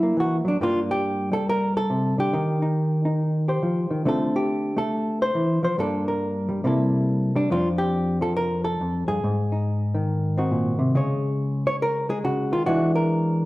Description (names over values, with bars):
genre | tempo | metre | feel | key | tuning
solo jazz | 139 BPM | 4/4 | swing 65% on 8ths | unclear | A4 = 440 Hz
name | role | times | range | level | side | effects
hollow-body jazz guitar | solo | 0.0-13.5 s | F2 to Db5 | -21 LUFS | equal | none
room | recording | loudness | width
wet large studio reverb, RT60 1.3 s | band playing live in one room | -21 LUFS | side -18 dB against mid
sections
0.0-10.9 A section; 10.9-13.5 B section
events
none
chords
0.0 D; 0.6 Gmadd9; 2.3 Eb69; 4.1 Dm7; 5.8 Gm; 6.6 C6; 7.5 F69; 9.2 Ab7; 10.9 Db5; 12.7 E9